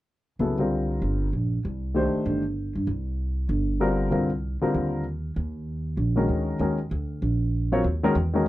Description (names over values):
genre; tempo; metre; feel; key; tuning
jazz; 194 BPM; 4/4; swing 60% on 8ths; unclear; A4 = 440 Hz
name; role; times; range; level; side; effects
warm baby grand piano; accompaniment; 0.4-8.5 s; Db3 to Db5; -24 LUFS; left 2 dB; none
upright bass; bass; 0.4-8.5 s; G1 to G2; -26 LUFS; right 1 dB; none
room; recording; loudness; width
little or no reverb; dry, close 1970s-style studio recording; -24 LUFS; side -16 dB against mid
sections
0.4-8.5 A section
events
none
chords
0.4 Cm9; 5.4 Ebm7